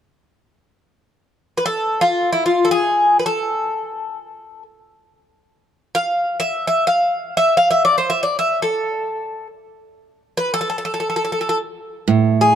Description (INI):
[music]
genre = greek folk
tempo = free time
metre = none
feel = none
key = unclear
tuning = A4 = 440 Hz
[part]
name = Greek bouzouki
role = melody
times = 1.6-12.6 s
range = E4 to F5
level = -16 LUFS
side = left 1 dB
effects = none
[part]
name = picked steel-string acoustic guitar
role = accompaniment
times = 12.1-12.6 s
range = A2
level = -13 LUFS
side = right 6 dB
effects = none
[sound]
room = moderate plate reverb, RT60 2.6 s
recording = dark, warm production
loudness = -16 LUFS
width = side -9 dB against mid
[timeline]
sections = 0.9-12.1 A section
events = none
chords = none